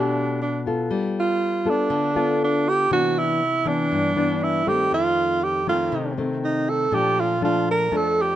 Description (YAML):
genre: bossa nova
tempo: 120 BPM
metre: 4/4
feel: straight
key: unclear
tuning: A4 = 437 Hz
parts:
  - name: breathy alto saxophone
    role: melody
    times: 0.0-8.4 s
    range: D4 to Bb4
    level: -21 LUFS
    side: right 3 dB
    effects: none
  - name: nylon-string guitar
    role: accompaniment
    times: 0.0-8.4 s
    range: F2 to A4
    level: -24 LUFS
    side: left 3 dB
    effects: none
room: light reverb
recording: none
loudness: -19 LUFS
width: side -12 dB against mid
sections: 0.0-8.4 A section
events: none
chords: 0.0 Em7 (rootless); 0.9 G9; 2.9 Cmaj9; 4.9 F7; 6.9 Bbmaj7